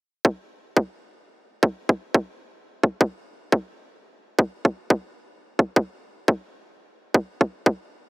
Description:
drum and bass; 174 BPM; 4/4; swing 53% on 16ths, half-time
electronic kick drum; drums; 0.2-7.7 s; -17 LUFS; equal; overdrive, high-pass filter on kick
little or no reverb; dry, gritty hardware recording; -22 LUFS; side -31 dB against mid
0.2-8.1 A section

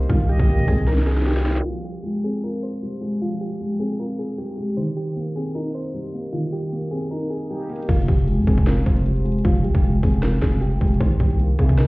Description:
hip hop, trap; 154 BPM; 4/4; half-time; F minor; A4 = 442 Hz
soft electric-piano-like synth keys; melody; 0.0-11.9 s; F4 to C5; -30 LUFS; equal; chorus, low-pass filter, digital delay
felt-muted upright piano; accompaniment; 0.0-11.9 s; Eb3 to F4; -25 LUFS; equal; low-pass filter
growling 808-style bass; bass; 0.0-1.6, 7.9-11.9 s; F1 to C3; -20 LUFS; equal
trap drum kit; drums; 0.0-11.9 s; crash cymbal, hi-hat, kick drum, snare drum; -20 LUFS; equal
jazz flute; second line; 0.3-0.8 s; Eb5; -34 LUFS; right 1 dB; digital delay
little or no reverb; heard muffled through a wall, stone room reverb, EQ, low-pass filter, nothing above 7.6 kHz; -19 LUFS; side -22 dB against mid
0.0-1.7 A section; 1.7-7.9 B section; 7.9-11.9 C section
drum fill 0.9-1.7; filter sweep 1.7-7.9, 7.9-11.9
0.0 Cm7; 1.7 Fmadd9; 4.8 Cm7; 7.9 Fmadd9; 11.0 Cm7

